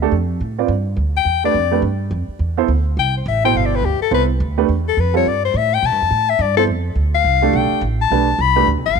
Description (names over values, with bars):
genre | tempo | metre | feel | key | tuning
jazz | 210 BPM | 4/4 | swing 61% on 8ths | G mixolydian | A4 = 440 Hz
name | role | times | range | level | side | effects
warm baby grand piano | accompaniment | 0.0-8.7 s | B2 to D5 | -20 LUFS | right 14 dB | none
upright bass | bass | 0.0-9.0 s | G1 to B2 | -19 LUFS | right 1 dB | none
warm soprano saxophone | melody | 1.2-9.0 s | G4 to B5 | -17 LUFS | left 11 dB | none
room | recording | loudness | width
light reverb, small room ambience | 1960s-style stereo with parts hard left and right | -15 LUFS | side -5 dB against mid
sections
0.0-9.0 A section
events
soprano saxophone solo 0.0-9.0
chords
0.0 G9